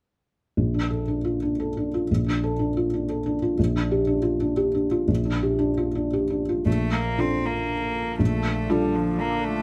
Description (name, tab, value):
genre	neoclassical piano and strings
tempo	118 BPM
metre	3/4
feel	rubato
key	unclear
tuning	A4 = 440 Hz
part	felt-muted upright piano	accompaniment	0.6-9.6 s	Bb1 to A4	-25 LUFS	equal	none
part	deep dark ambient pad	sustained chords	7.8-9.6 s	D4 to A4	-36 LUFS	equal	chorus, built-in reverb
part	clear cello	second line	6.7-9.6 s	F3 to C4	-29 LUFS	equal	none
room	light reverb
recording	none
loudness	-24 LUFS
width	mono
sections	0.6-6.7 A section; 6.7-9.6 B section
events	none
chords	0.6 Bbmaj7; 3.6 Gm7/Bb; 6.7 Bbmaj7